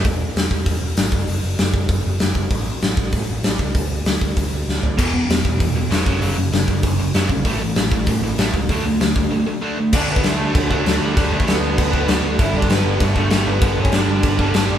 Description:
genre	punk rock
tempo	194 BPM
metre	4/4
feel	straight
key	unclear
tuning	A4 = 440 Hz
part	distorted electric guitar	riff	0.0, 5.0-14.8 s	E2 to D4	-21 LUFS	equal	overdrive
part	overdriven picked electric bass	bass	0.0-14.8 s	E1 to A2	-22 LUFS	equal	none
part	big rock drum kit	drums	0.0-14.6 s	crash cymbal, hi-hat, kick drum, snare drum, splash cymbal, toms	-19 LUFS	equal	none
part	lead guitar through a small cranked amp	melody	9.9-14.7 s	F#3 to E5	-24 LUFS	left 1 dB	overdrive
room	light reverb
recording	band playing live in one room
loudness	-16 LUFS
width	side -10 dB against mid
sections	0.0-9.9 A section; 9.9-14.8 B section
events	drum fill 4.7-5.0; break 9.3-9.9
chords	0.0 N.C.; 5.0 E5; 6.1 F#5; 7.5 A5; 8.7 D5; 12.4 G

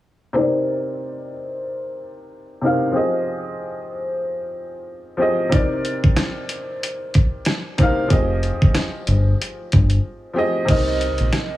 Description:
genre	hip hop, boom-bap hip-hop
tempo	93 BPM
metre	4/4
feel	swing 57% on 16ths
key	C minor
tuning	A4 = 441 Hz
part	warm upright piano	accompaniment	0.3-11.6 s	C3 to F5	-22 LUFS	left 1 dB	low-pass filter
part	boom bap sampler-style drum kit	drums	5.5-11.5 s	crash cymbal, hi-hat, kick drum, rim click, snare drum	-18 LUFS	equal	none
part	deep dub fingered electric bass	bass	8.1-11.3 s	F1 to C2	-18 LUFS	equal	none
part	vibraphone with soft mallets	melody	10.7-11.6 s	Eb5	-27 LUFS	right 6 dB	none
room	digital ambience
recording	small room ambience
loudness	-18 LUFS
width	side -15 dB against mid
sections	0.4-10.7 A section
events	filter sweep on upright piano 0.4-10.7; break 10.0-10.7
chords	0.4 Cm9; 2.9 Fm9; 5.5 Cm9; 8.1 Fm9; 10.7 Cm7

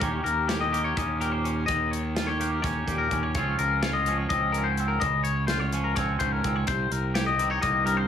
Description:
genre	math rock and midwest emo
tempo	252 BPM (eighths)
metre	7/8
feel	straight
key	unclear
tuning	A4 = 440 Hz
part	twangy electric guitar	accompaniment	0.0-8.1 s	G2 to G4	-30 LUFS	right 5 dB	lush chorus
part	twangy electric guitar	arpeggios	0.0-8.1 s	Bb4 to Eb5	-27 LUFS	left 8 dB	slapback echo
part	fuzz fingered electric bass	bass	0.0-8.1 s	C2 to Eb2	-29 LUFS	equal	overdrive
part	modern studio drum kit	drums	0.0-8.0 s	hi-hat, kick drum, snare drum	-32 LUFS	equal	none
room	light reverb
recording	small room ambience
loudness	-24 LUFS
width	side -8 dB against mid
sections	0.0-8.1 A section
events	none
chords	0.0 Eb7; 3.4 Dbmaj7; 6.7 Cm7

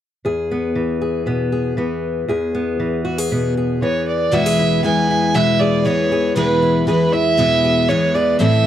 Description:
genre	folk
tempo	118 BPM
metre	4/4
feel	straight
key	E major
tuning	A4 = 439 Hz
part	fingerpicked steel-string acoustic guitar	accompaniment	0.2-8.7 s	E2 to A4	-19 LUFS	left 1 dB	none
part	dark fiddle	melody	3.8-8.7 s	B4 to G#5	-17 LUFS	right 2 dB	none
part	picked twelve-string acoustic guitar	accompaniment	4.3-8.7 s	E2 to E4	-18 LUFS	left 3 dB	none
room	small room reverb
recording	dry, close 1970s-style studio recording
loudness	-15 LUFS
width	side -10 dB against mid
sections	0.2-4.3 A section; 4.3-8.7 B section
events	none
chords	0.2 E

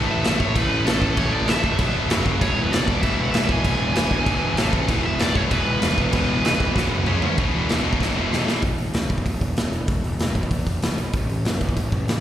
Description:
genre	punk rock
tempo	193 BPM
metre	4/4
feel	straight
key	E mixolydian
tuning	A4 = 441 Hz
part	distorted electric guitar	riff	0.0-8.6 s	E2 to C#4	-23 LUFS	left 1 dB	overdrive
part	fuzz picked electric bass	bass	0.0-12.2 s	E1 to F#2	-25 LUFS	equal	overdrive
part	overdriven electric guitar	melody	0.1-7.1 s	A4 to G#5	-26 LUFS	right 2 dB	digital delay
part	raw garage drum kit	drums	0.2-12.2 s	crash cymbal, hi-hat, kick drum, snare drum, toms	-23 LUFS	equal	none
room	small room ambience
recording	live gig heard through the venue's PA, recital hall reverb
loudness	-19 LUFS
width	side -11 dB against mid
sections	0.0-7.4 A section; 7.4-8.6 B section; 8.6-12.2 C section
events	drum fill 6.8-7.4, 8.0-8.6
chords	0.0 A5; 1.8 B5; 2.1 F#5; 2.4 E; 4.6 A5; 4.9 E5; 6.8 F#5; 7.1 C#5; 7.4 E5; 11.1 A5

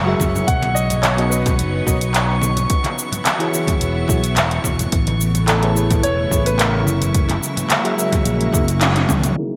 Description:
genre	sunset chillout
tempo	108 BPM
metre	4/4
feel	swing 53% on 16ths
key	unclear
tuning	A4 = 440 Hz
part	soft string machine	sustained chords	0.0-9.6 s	C#3 to D#5	-27 LUFS	equal	ensemble chorus
part	fingered electric bass	bass	0.0-9.3 s	E1 to C#2	-22 LUFS	equal	tube saturation
part	drifting glass-harmonics texture	texture	0.0-9.6 s	C#6 to F#6	-31 LUFS	equal	chorus, built-in reverb
part	soft electric-piano-like synth keys	accompaniment	0.1-9.6 s	E3 to E5	-27 LUFS	equal	chorus, digital delay
part	deep house drum kit	drums	0.2-9.3 s	handclaps, hi-hat, shaker, toms	-23 LUFS	equal	low-pass filter on perc, low-pass filter on snare, low-pass filter on hats, low-pass filter on toms, low-pass filter on room, gated reverb
part	electronic kick drum	drums	0.2-9.2 s	none	-23 LUFS	equal	none
part	congas	percussion	0.2-9.3 s	none	-30 LUFS	equal	none
part	dark baby grand piano	melody	0.5-7.0 s	A4 to F#5	-26 LUFS	equal	digital delay
room	wet lush hall reverb, RT60 2.3 s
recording	bright 1980s-style digital production, low-pass filter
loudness	-18 LUFS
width	mono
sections	0.0-9.4 A section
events	drum fill 8.5-9.4; band accent 8.8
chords	0.5 Bmaj9; 2.7 E69; 4.9 Amaj9; 6.9 F#9

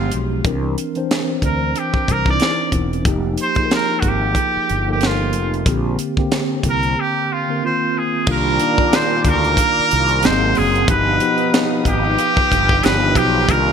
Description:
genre	R&B, neo-soul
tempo	92 BPM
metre	4/4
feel	swing 56% on 16ths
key	unclear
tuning	A4 = 440 Hz
part	trumpet with straight mute	melody	0.0-13.7 s	F4 to D5	-19 LUFS	right 1 dB	none
part	mellow tine electric piano	accompaniment	0.0-13.7 s	D3 to C5	-21 LUFS	right 1 dB	medium stereo tremolo
part	fretless electric bass	bass	0.0-13.7 s	E1 to D2	-21 LUFS	left 1 dB	analog chorus
part	tight funk drum kit	drums	0.1-13.7 s	crash cymbal, hi-hat, kick drum, snare drum	-20 LUFS	equal	gated reverb
part	lush unison pad	sustained chords	8.3-13.7 s	Bb4 to D#6	-27 LUFS	left 1 dB	chorus, phaser
part	warm trombone section	stabs	8.3-13.7 s	Bb2 to G4	-26 LUFS	left 6 dB	none
room	light reverb, studio reverb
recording	bright 1980s-style digital production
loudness	-15 LUFS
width	side -7 dB against mid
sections	0.0-8.3 A section; 8.3-13.7 B section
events	none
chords	0.4 C9; 3.0 F9sus4; 5.7 Bb69; 7.6 F7sus4; 8.3 Cm11; 10.2 Ab9; 10.9 Gaug7; 12.8 G7b13

